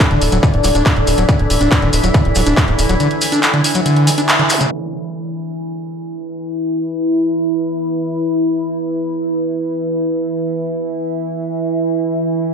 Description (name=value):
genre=psychedelic trance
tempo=140 BPM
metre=4/4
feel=straight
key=unclear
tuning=A4 = 438 Hz
part: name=overtone-sweeping drone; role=sustained chords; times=0.0-12.5 s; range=E3 to E4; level=-20 LUFS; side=right 3 dB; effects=chorus, built-in reverb, sidechain pumping
part: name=electronic kick drum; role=drums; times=0.0-2.7 s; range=none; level=-14 LUFS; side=equal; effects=distortion, overdrive
part: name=techno drum kit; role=drums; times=0.0-4.8 s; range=crash cymbal, handclaps, hi-hat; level=-18 LUFS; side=equal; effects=overdrive, low-pass filter on hats, low-pass filter on snare, low-pass filter on cymbals
part: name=maracas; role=percussion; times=0.0-4.7 s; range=none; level=-25 LUFS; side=left 2 dB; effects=none
part: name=deep dark ambient pad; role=texture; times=0.0-12.5 s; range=D4 to B5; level=-21 LUFS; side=left 3 dB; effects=chorus, built-in reverb, sidechain pumping
part: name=screaming distorted acid line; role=riff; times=0.1-4.7 s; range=C#3 to D4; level=-18 LUFS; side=equal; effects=distortion, chorus, auto-pan, sidechain pumping, digital delay
part: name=tight sequencer bass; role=bass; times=0.1-3.0 s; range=D1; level=-16 LUFS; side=equal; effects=none
part: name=zap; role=sound effects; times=4.5-4.6 s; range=none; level=-24 LUFS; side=equal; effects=none
room=moderate lush hall reverb, RT60 2.0 s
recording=played on a big sound system in a bare room, large studio reverb, low-pass filter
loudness=-14 LUFS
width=side -6 dB against mid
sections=0.0-4.7 A section; 4.7-12.5 B section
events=kick drops out 3.0-4.7; band accent 4.3; filter sweep on synth drone 4.7-12.5; filter sweep 4.7-12.5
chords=0.0 D5; 4.7 E5